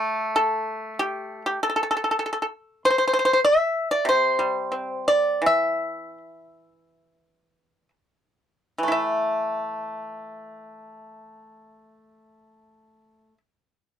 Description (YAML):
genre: chinese traditional, Chinese solo plucked strings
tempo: 59-101 BPM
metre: 4/4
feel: rubato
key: E jue mode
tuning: A4 = 440 Hz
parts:
  - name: pipa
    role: solo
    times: 0.0-13.4 s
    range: C3 to E5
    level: -21 LUFS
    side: equal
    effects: none
room: little or no reverb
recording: dry, close 1970s-style studio recording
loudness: -21 LUFS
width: side -9 dB against mid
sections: 0.0-8.9 A section; 8.9-12.8 B section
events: slowing down 2.8-8.9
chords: none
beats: | 0.32 0.96 1.58 2.19 | 2.80 3.43 4.06 4.72 | 5.43 6.17 6.97 7.90 | 8.91 9.90 10.86 11.82